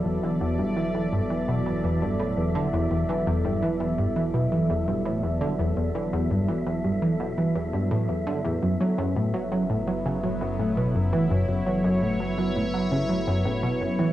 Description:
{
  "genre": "ambient, sequencer-driven space music",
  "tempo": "84 BPM",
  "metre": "4/4",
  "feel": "straight",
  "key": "unclear",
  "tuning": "A4 = 440 Hz",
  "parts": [
    { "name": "sweeping resonant pad", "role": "sustained chords", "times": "0.0-14.1 s", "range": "F#3 to D5", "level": "-28 LUFS", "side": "equal", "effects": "chorus, cassette tape" },
    { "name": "round analog bass", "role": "bass", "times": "0.0-14.1 s", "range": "E1 to F#1", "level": "-38 LUFS", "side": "left 1 dB", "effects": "none" },
    { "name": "wind-like tuned noise texture", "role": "texture", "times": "0.0-14.1 s", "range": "E5", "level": "-36 LUFS", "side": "left 1 dB", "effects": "built-in reverb, cassette tape" },
    { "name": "tight sequenced synth", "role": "riff", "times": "0.1-14.1 s", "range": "E2 to F#3", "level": "-24 LUFS", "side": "equal", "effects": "chorus, cassette tape, tape echo" }
  ],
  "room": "wet studio reverb, RT60 0.6 s",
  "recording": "home recording on cassette, nothing above 10.7 kHz",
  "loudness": "-23 LUFS",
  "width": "side -14 dB against mid",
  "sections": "0.0-14.1 A section",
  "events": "none",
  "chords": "0.0 Em7; 8.6 F#m7",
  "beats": "| 0.06 0.77 1.48 2.20 | 2.91 3.63 4.34 5.05 | 5.77 6.48 7.20 7.91 | 8.63 9.34 10.05 10.77 | 11.48 12.20 12.91 13.63"
}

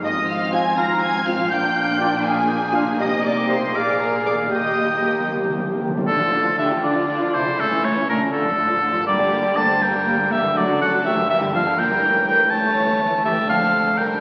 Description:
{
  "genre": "classical, dramatic, fast romantic movement for symphony orchestra",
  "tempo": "81 BPM (dotted quarters)",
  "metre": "6/8",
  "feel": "rubato",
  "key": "Eb major, D minor from 6.1 s",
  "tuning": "A4 = 440 Hz",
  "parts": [
    { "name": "rich symphonic violin section", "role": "melody", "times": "0.0-14.2 s", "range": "C#4 to Bb6", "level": "-32 LUFS", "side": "equal", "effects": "none" },
    { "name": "clear oboe", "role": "second line", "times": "0.0-14.2 s", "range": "A4 to A5", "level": "-23 LUFS", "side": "equal", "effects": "none" },
    { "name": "silver concert flute", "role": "second line", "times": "0.0-5.3 s", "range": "Ab4 to Bb5", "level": "-30 LUFS", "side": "equal", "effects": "none" },
    { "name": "warm symphonic viola section", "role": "accompaniment", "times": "0.0-14.2 s", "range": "D3 to Ab4", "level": "-27 LUFS", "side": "equal", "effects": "none" },
    { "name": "concert harp", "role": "arpeggios", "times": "0.0-14.2 s", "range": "F2 to D5", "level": "-35 LUFS", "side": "equal", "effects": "none" },
    { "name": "rich symphonic cello section", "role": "bass", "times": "0.0-14.2 s", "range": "Eb2 to A3", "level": "-34 LUFS", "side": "equal", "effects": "none" },
    { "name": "warm symphonic double bass section", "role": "bass", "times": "0.0-14.2 s", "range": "F1 to Eb2", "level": "-40 LUFS", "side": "equal", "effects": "none" },
    { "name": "warm symphonic violin section", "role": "second line", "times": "0.1-14.2 s", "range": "C#4 to Bb5", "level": "-30 LUFS", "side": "equal", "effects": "none" },
    { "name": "warm French horn section", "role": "sustained chords", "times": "0.5-5.9 s", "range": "Bb3 to Ab4", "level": "-31 LUFS", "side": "equal", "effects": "none" },
    { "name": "timpani", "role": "percussion", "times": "4.5-6.8 s", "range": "D3 to Eb3", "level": "-31 LUFS", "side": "equal", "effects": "none" }
  ],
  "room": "wet scoring stage reverb, RT60 1.7 s",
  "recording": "very old 78 rpm record, vinyl crackle",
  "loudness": "-20 LUFS",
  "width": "mono",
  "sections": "0.0-6.1 A section; 6.1-14.2 B section",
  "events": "timpani fill 4.5-6.1",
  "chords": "0.0 Fm7/Ab; 1.5 Bb7; 3.0 Cm7; 3.7 Bb5; 4.5 Eb; 6.1 Dm; 7.6 A/C#; 8.3 Dm; 9.1 Gm; 10.6 D/F#; 11.3 Gm7; 12.0 A7/G; 13.5 Dm/F",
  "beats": "| 0.05 0.79 | 1.52 2.25 | 2.99 3.75 | 4.51 5.29 | 6.07 6.83 | 7.58 8.33 | 9.07 9.81 | 10.55 11.29 | 12.03 12.76 | 13.49"
}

